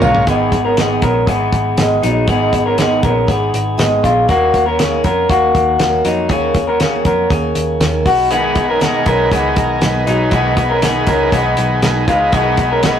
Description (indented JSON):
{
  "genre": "jangly indie pop",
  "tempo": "119 BPM",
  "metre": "4/4",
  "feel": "straight",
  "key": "unclear",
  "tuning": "A4 = 443 Hz",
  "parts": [
    { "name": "overdriven combo organ", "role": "accompaniment", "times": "0.0-0.3, 8.3-13.0 s", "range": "Db4 to Db5", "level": "-20 LUFS", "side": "right 2 dB", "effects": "none" },
    { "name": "picked twelve-string acoustic guitar", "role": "accompaniment", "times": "0.0-13.0 s", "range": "Ab2 to Ab4", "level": "-20 LUFS", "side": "right 3 dB", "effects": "none" },
    { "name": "electric guitar through a small old amp", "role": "arpeggios", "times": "0.0-13.0 s", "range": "Gb3 to Bb4", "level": "-15 LUFS", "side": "left 2 dB", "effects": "none" },
    { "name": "vintage muted picked electric bass", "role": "bass", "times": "0.0-13.0 s", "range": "Ab1 to F2", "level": "-21 LUFS", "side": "equal", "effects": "none" },
    { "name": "cloth-damped thuddy drum kit", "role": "drums", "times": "0.0-13.0 s", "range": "hi-hat, kick drum, snare drum, toms", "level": "-18 LUFS", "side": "equal", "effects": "none" }
  ],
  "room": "moderate studio reverb, RT60 0.5 s",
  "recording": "rough rehearsal-room recording, tube saturation",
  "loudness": "-12 LUFS",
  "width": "side -9 dB against mid",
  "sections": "0.3-13.0 A section",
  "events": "drum fill 0.0",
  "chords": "0.3 Abm; 4.3 Ebm7; 8.1 Cb6",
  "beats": "| 0.27 0.77 1.27 1.78 | 2.28 2.78 3.28 3.79 | 4.29 4.79 5.29 5.80 | 6.30 6.80 7.30 7.81 | 8.31 8.81 9.32 9.82 | 10.32 10.82 11.33 11.83 | 12.33 12.84"
}